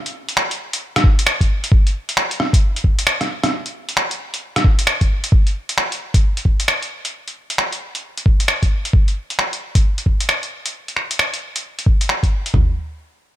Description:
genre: future garage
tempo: 133 BPM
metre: 4/4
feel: swing 63% on 16ths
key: none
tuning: none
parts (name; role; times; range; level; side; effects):
- lo-fi sampler-style drum kit; drums; 0.1-12.5 s; finger snaps, hi-hat, rim click; -19 LUFS; equal; none
- lo-fi sampler-style drum kit; drums; 1.0-12.7 s; kick drum, toms; -14 LUFS; equal; none
room: little or no reverb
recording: none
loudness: -16 LUFS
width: side -14 dB against mid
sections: 0.0-12.5 A section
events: none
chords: none

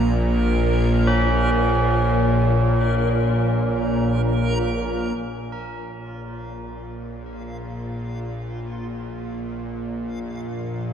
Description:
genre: dark ambient drone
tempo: free time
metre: none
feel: none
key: Bb minor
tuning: A4 = 440 Hz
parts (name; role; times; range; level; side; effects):
- deep dark ambient pad; sustained chords; 0.0-10.9 s; F3 to Bb4; -34 LUFS; right 2 dB; none
- bowed-like drone; drone; 0.0-10.9 s; Bb1 to Bb2; -22 LUFS; equal; built-in reverb
- backwards swelling texture; texture; 0.0-10.9 s; F4 to Bb4; -32 LUFS; right 1 dB; built-in reverb
- tubular bells; arpeggios; 1.1-10.9 s; Db4 to Bb4; -27 LUFS; right 3 dB; ping-pong delay
room: wet cathedral reverb, RT60 5.9 s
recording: in a vast, echoing space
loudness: -19 LUFS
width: side -8 dB against mid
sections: 0.0-5.2 A section; 5.2-10.9 B section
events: fade-in on synth drone 5.2-10.9; fade-in on ambient pad 5.2-10.9; fade-in on synth texture 5.2-10.9; fade-in on tubular bells 5.2-10.9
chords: 0.0 Bb5

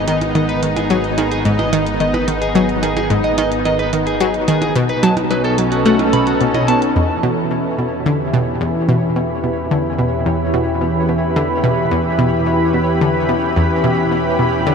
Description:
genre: ambient, sequencer-driven space music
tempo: 109 BPM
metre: 4/4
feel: straight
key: G# minor, E dorian from 7.0 s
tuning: A4 = 440 Hz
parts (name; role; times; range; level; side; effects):
- lush unison pad; sustained chords; 0.0-14.7 s; B2 to B5; -18 LUFS; equal; chorus
- electric guitar at the edge of break-up; arpeggios; 0.0-6.8 s; F#4 to B5; -22 LUFS; right 1 dB; auto-pan, analog delay
- analog drone; bass; 0.0-14.7 s; G#1 to E2; -25 LUFS; equal; chorus
- pulsing gated texture; texture; 0.0-14.7 s; B3 to C#5; -27 LUFS; equal; chorus, built-in reverb
- analog pluck; riff; 0.1-14.7 s; E2 to B3; -18 LUFS; equal; chorus, analog delay
- electronic hi-hat and percussion blips; percussion; 0.1-6.9 s; none; -29 LUFS; right 4 dB; analog delay
room: wet huge ambient reverb, RT60 8.5 s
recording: none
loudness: -14 LUFS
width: side -6 dB against mid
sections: 0.0-7.0 A section; 7.0-14.7 B section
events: none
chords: 0.0 G#m; 4.8 B7; 7.0 Em

